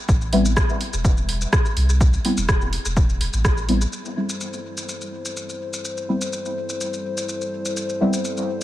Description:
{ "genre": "dub techno", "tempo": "125 BPM", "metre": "4/4", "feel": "straight", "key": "A minor", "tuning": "A4 = 439 Hz", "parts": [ { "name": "pure sine sub bass", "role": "bass", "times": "0.1-3.9 s", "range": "E1 to C2", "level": "-22 LUFS", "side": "equal", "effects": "sidechain pumping" }, { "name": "electronic kick drum", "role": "drums", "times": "0.1-3.5 s", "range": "none", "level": "-19 LUFS", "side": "equal", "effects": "none" }, { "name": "punchy analog drum machine", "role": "drums", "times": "0.1-8.6 s", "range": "hi-hat, rim click, shaker", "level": "-27 LUFS", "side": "equal", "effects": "dub echo" }, { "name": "deep mellow chord stab", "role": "stabs", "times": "0.3-8.1 s", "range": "G3 to E4", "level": "-25 LUFS", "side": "equal", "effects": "chorus, phaser, sidechain pumping, dub echo" }, { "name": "dark analog pad", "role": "sustained chords", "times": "3.9-8.6 s", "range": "G3 to C5", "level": "-28 LUFS", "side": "left 2 dB", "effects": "chorus, sidechain pumping" } ], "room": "light reverb", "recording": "vinyl crackle", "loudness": "-20 LUFS", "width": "side -14 dB against mid", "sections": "0.0-3.9 A section; 3.9-8.6 B section", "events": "none", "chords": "0.0 Am7" }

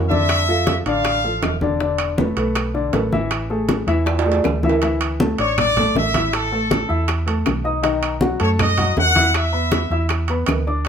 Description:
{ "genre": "latin, salsa", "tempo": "159 BPM", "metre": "4/4", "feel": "straight", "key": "unclear", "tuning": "A4 = 439 Hz", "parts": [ { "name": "warm upright piano", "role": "accompaniment", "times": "0.0-10.9 s", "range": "D3 to E6", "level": "-22 LUFS", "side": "left 3 dB", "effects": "none" }, { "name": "hollow-body short-scale fingered electric bass", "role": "bass", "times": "0.0-10.9 s", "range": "E1 to F#2", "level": "-23 LUFS", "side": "right 1 dB", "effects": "none" }, { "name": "bright trumpet section", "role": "melody", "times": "0.1-1.6, 5.4-10.1 s", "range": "A4 to F#5", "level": "-20 LUFS", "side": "equal", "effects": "none" }, { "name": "bongos", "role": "percussion", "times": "0.1-10.9 s", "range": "none", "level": "-27 LUFS", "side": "left 6 dB", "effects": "none" }, { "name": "congas", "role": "percussion", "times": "0.1-10.9 s", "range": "none", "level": "-24 LUFS", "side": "right 1 dB", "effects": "none" }, { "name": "claves", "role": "percussion", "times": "0.3-10.7 s", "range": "none", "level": "-32 LUFS", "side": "left 4 dB", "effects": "none" }, { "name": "timbales", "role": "percussion", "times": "0.3-10.9 s", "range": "none", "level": "-25 LUFS", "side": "right 6 dB", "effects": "none" } ], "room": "moderate studio reverb, RT60 0.7 s", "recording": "minimal, uncompressed stereo recording", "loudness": "-16 LUFS", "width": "side -7 dB against mid", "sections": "0.0-4.8 A section; 4.8-10.9 B section", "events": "drum fill 4.1-4.8", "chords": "0.3 Dm; 1.8 E7sus4; 3.3 A5; 4.8 Dsus2; 6.3 A5; 7.8 B7; 9.3 E5" }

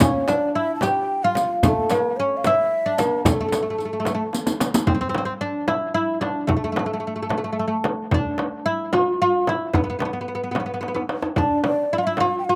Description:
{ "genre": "Persian modal ensemble", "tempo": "74 BPM (dotted quarters)", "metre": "6/8", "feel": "straight", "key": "A dastgah homayun, E dastgah shur from 4.9 s", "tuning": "A4 = 440 Hz", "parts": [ { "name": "oud", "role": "melody", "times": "0.0-12.6 s", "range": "A3 to G4", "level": "-25 LUFS", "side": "equal", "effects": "slapback echo" }, { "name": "breathy mellow ney", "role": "second line", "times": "0.0-4.3, 11.4-12.6 s", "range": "A4 to A5", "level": "-27 LUFS", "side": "equal", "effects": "none" }, { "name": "frame drum", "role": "percussion", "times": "0.0-12.3 s", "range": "none", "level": "-28 LUFS", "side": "equal", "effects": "none" }, { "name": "riq", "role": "percussion", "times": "0.0-4.9 s", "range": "none", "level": "-28 LUFS", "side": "equal", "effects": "none" }, { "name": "tombak", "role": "percussion", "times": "0.0-12.3 s", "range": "none", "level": "-28 LUFS", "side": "equal", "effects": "none" } ], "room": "little or no reverb", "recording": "recorded outdoors, with no room sound", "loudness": "-22 LUFS", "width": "mono", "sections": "0.0-4.9 A section; 4.9-12.6 B section", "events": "drum fill 4.3-4.9, 10.8-11.4", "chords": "none" }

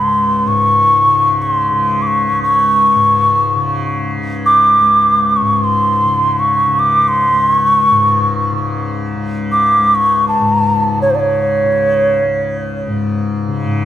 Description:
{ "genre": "indian classical, Hindustani", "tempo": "free time", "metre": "none", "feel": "none", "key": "unclear", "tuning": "A4 = 440 Hz", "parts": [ { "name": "mellow hollow bansuri", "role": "melody", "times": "0.0-12.9 s", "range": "B#4 to D6", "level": "-11 LUFS", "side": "equal", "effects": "none" }, { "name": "tanpura", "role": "drone", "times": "0.0-13.8 s", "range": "C#2 to C#3", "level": "-18 LUFS", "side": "left 3 dB", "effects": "none" } ], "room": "moderate concert hall reverb, RT60 1.9 s", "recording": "none", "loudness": "-11 LUFS", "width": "side -12 dB against mid", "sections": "0.0-13.6 A section", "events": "none", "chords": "none" }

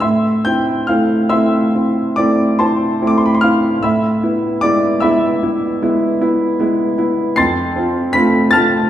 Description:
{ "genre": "classical, romantic nocturne for solo piano", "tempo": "45-53 BPM (dotted quarters)", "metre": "9/8", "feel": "rubato", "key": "A minor", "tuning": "A4 = 438 Hz", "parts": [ { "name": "clear concert grand piano", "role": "solo", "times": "0.0-8.9 s", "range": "F2 to C7", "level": "-13 LUFS", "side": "equal", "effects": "none" } ], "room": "wet recital hall reverb, RT60 1.8 s", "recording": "heard from further back in the room", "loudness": "-13 LUFS", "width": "side -11 dB against mid", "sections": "0.0-8.9 A section", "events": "none", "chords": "0.0 Am; 3.8 E/A; 7.4 F" }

